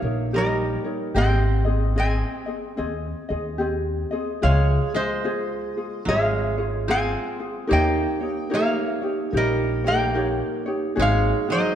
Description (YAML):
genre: Hawaiian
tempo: 73 BPM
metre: 4/4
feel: swing 62% on 8ths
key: Ab major, Db major from 4.4 s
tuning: A4 = 440 Hz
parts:
  - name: metal-body resonator slide guitar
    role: melody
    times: 0.0-11.8 s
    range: Bb4 to Ab5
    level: -26 LUFS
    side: left 1 dB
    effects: none
  - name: koto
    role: second line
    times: 0.0-11.8 s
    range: Gb3 to C4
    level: -29 LUFS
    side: right 3 dB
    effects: none
  - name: ukulele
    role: accompaniment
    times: 0.0-11.8 s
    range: C4 to Eb5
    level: -26 LUFS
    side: equal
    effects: none
  - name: upright bass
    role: bass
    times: 0.0-11.3 s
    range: Ab1 to Eb2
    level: -24 LUFS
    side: equal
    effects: none
room: moderate concert hall reverb, RT60 2.0 s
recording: dark, warm production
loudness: -21 LUFS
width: side -10 dB against mid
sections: 0.0-4.4 A section; 4.4-11.8 B section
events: none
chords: 0.0 Eb7; 1.1 Abmaj7; 4.4 Dbmaj7; 7.7 Eb7; 11.0 Ab7sus4